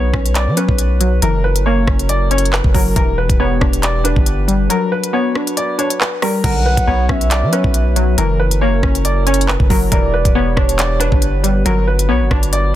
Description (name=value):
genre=hip hop, drill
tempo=138 BPM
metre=4/4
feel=half-time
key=B harmonic minor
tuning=A4 = 437 Hz
part: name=bright upright piano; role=melody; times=0.0-12.7 s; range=A#4 to D5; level=-21 LUFS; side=left 1 dB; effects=low-pass filter, tape echo
part: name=glassy wavetable pluck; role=accompaniment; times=0.0-12.8 s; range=D3 to D4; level=-20 LUFS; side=left 2 dB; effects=chorus, low-pass filter
part: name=mellow French horn section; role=sustained chords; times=0.0-12.8 s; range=E3 to C#5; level=-26 LUFS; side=equal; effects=none
part: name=long sustained 808-style bass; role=bass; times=0.0-12.8 s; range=D1 to F#3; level=-16 LUFS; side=equal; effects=none
part: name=drill drum kit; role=drums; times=0.1-12.6 s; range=crash cymbal, handclaps, hi-hat, kick drum, rim click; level=-16 LUFS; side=equal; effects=soft clipping on snare
part: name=gliding portamento lead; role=second line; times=6.4-11.6 s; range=C#5 to F#5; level=-23 LUFS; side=right 3 dB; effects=chorus, tape echo
room=little or no reverb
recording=dense, heavily limited modern master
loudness=-12 LUFS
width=side -13 dB against mid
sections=0.0-6.4 A section; 6.4-12.8 B section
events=break 4.7-6.4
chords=0.0 Bmadd9; 1.2 F#7; 3.0 Em7; 4.7 Gmaj7; 6.4 Bmadd9; 8.2 F#7; 9.9 Em7; 11.7 Gmaj7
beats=0.35 0.79 | 1.22 1.66 2.09 2.53 | 2.96 3.40 3.83 4.27 | 4.70 5.14 5.57 6.01 | 6.44 6.88 7.31 7.75 | 8.18 8.61 9.05 9.48 | 9.92 10.35 10.79 11.22 | 11.66 12.09 12.53